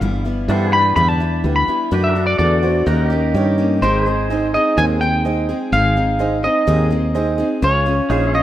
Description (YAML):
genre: honky-tonk and classic country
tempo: 126 BPM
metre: 4/4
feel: straight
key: Ab major from 3.8 s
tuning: A4 = 440 Hz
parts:
  - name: picked steel-string acoustic guitar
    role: accompaniment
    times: 0.0-8.4 s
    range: G2 to Ab4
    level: -22 LUFS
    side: left 2 dB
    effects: none
  - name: woody fretless electric bass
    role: bass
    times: 0.0-8.4 s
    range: G1 to G2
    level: -18 LUFS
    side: equal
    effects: none
  - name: warm grand piano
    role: accompaniment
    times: 0.5-8.4 s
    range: Eb4 to F5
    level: -24 LUFS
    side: right 5 dB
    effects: none
  - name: pedal steel guitar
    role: sustained chords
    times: 0.5-8.4 s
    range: D4 to Db5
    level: -25 LUFS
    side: right 1 dB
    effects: none
  - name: twangy electric guitar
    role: melody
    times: 0.7-8.4 s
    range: C5 to B5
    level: -19 LUFS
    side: equal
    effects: none
room: light reverb, small room reverb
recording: rough home demo mix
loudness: -14 LUFS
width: side -12 dB against mid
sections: 0.0-3.8 A section; 3.8-8.4 B section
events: clean electric guitar solo 0.0-3.8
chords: 0.0 G6; 1.9 D; 2.9 Eb7; 3.8 Ab; 7.6 Db